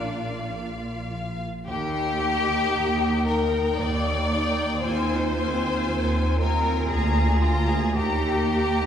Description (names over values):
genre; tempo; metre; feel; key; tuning
classical, slow romantic movement for string orchestra; 51-59 BPM; 3/4; rubato; Eb major; A4 = 436 Hz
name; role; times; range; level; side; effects
rich symphonic violin section; melody; 0.0-8.9 s; F5 to Bb5; -33 LUFS; left 4 dB; none
clear symphonic violin section; second line; 0.0-8.9 s; F4 to D5; -26 LUFS; left 3 dB; none
rich studio viola section; accompaniment; 0.0-8.9 s; Bb3 to G4; -30 LUFS; right 1 dB; none
bright symphonic cello section; bass; 0.0-8.9 s; D2 to D4; -29 LUFS; right 1 dB; none
clear symphonic double bass section; bass; 0.0-8.9 s; Bb1 to Eb2; -27 LUFS; right 1 dB; none
room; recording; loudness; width
wet recital hall reverb, RT60 1.4 s; recorded in a church or concert hall; -22 LUFS; side -9 dB against mid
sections
0.0-1.7 A section; 1.7-8.9 B section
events
none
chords
0.0 Bb; 1.7 Eb; 4.8 Fm7/Eb; 6.9 Bb7/D; 7.9 Eb